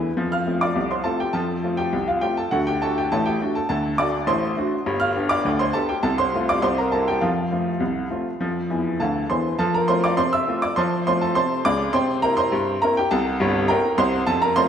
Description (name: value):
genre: ragtime piano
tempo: 102 BPM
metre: 2/4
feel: straight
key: F major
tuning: A4 = 440 Hz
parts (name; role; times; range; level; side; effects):
- clear upright piano; solo; 0.0-14.7 s; G1 to F6; -19 LUFS; equal; none
room: wet echo chamber reverb, RT60 2.5 s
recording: heard from further back in the room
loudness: -19 LUFS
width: side -8 dB against mid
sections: 0.2-9.6 A section; 9.6-14.7 B section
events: upright piano fill 0.0, 8.7-9.6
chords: 0.2 F; 2.5 D7; 4.9 G7; 6.0 F/C; 6.6 C7; 7.2 F; 11.9 C7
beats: | 0.17 0.76 | 1.35 1.94 | 2.52 3.11 | 3.70 4.28 | 4.87 5.45 | 6.04 6.62 | 7.21 7.81 | 8.40 8.99 | 9.59 10.18 | 10.76 11.35 | 11.93 12.52 | 13.11 13.69 | 14.27